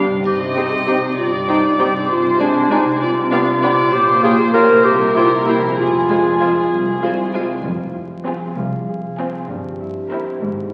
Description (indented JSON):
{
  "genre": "cinematic, playful, whimsical film cue",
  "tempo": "65 BPM (dotted quarters)",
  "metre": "6/8",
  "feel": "straight",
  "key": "C minor, F minor from 3.9 s",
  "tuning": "A4 = 436 Hz",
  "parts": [
    { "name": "rich studio violin section", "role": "second line", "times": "0.0-10.3 s", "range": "E4 to Ab5", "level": "-30 LUFS", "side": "equal", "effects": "none" },
    { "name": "warm studio viola section", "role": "accompaniment", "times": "0.0-10.3 s", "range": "Ab3 to F4", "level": "-26 LUFS", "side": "equal", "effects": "none" },
    { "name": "concert harp", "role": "arpeggios", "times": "0.0-10.7 s", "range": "G2 to F5", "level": "-28 LUFS", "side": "equal", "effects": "none" },
    { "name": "dark studio double bass section", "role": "bass", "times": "0.0-10.7 s", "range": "F1 to C2", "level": "-34 LUFS", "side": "equal", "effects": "none" },
    { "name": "warm studio cello section", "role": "bass", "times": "0.0-10.7 s", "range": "C2 to C3", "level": "-26 LUFS", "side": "equal", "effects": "none" },
    { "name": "clear studio violin section", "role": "melody", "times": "0.3-10.3 s", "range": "Ab4 to F5", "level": "-24 LUFS", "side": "equal", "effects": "none" },
    { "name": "warm clarinet", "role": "second line", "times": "0.3-7.3 s", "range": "D4 to Bb4", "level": "-18 LUFS", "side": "equal", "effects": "none" },
    { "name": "triangle", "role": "percussion", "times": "0.3-1.4 s", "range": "none", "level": "-52 LUFS", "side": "equal", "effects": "none" }
  ],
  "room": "wet scoring stage reverb, RT60 2.0 s",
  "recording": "very old 78 rpm record, vinyl crackle",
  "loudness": "-17 LUFS",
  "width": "mono",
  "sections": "0.0-7.6 A section; 7.6-10.7 B section",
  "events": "none",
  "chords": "0.2 Cm; 2.1 Fm6/C; 3.0 G7/C; 3.9 Gm7b5/Bb; 4.8 C7; 5.8 Fm; 9.5 C7/G",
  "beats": "| 0.25 1.18 | 2.10 3.01 | 3.93 4.85 | 5.78 6.71 | 7.65 8.57 | 9.50 10.42"
}